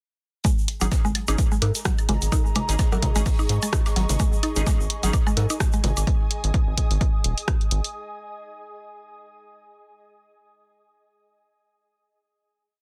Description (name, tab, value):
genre	minimal techno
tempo	128 BPM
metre	4/4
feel	swing 56% on 16ths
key	unclear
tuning	A4 = 442 Hz
part	mallet-like synth pluck	riff	0.4-5.8 s	F#3 to D#4	-33 LUFS	equal	chorus, sidechain pumping, tape echo
part	electronic kick drum	drums	0.4-7.6 s	none	-24 LUFS	equal	none
part	jazz brush drum kit	drums	0.4-6.0 s	hi-hat, snare drum	-43 LUFS	equal	none
part	punchy analog drum machine	drums	0.4-7.9 s	hi-hat, rim click	-30 LUFS	equal	soft clipping on snare
part	ethereal airy pad	texture	1.6-7.9 s	G#4 to D#6	-38 LUFS	equal	ensemble chorus, built-in reverb, sidechain pumping
part	tube shaker	percussion	0.5-6.1 s	none	-37 LUFS	equal	none
part	wavetable chord stab	stabs	0.8-5.1 s	C#4 to G#4	-35 LUFS	equal	phaser, tape echo
part	rubbery square bass	bass	0.8-7.8 s	D#1 to G#2	-26 LUFS	equal	tube saturation, sidechain pumping
part	woodblock, cowbell and bongos	percussion	0.8-6.1 s	none	-34 LUFS	equal	tape echo
room	little or no reverb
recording	dense, heavily limited modern master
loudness	-23 LUFS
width	mono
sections	0.4-7.9 drop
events	drop 0.4-7.9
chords	0.4 G#sus4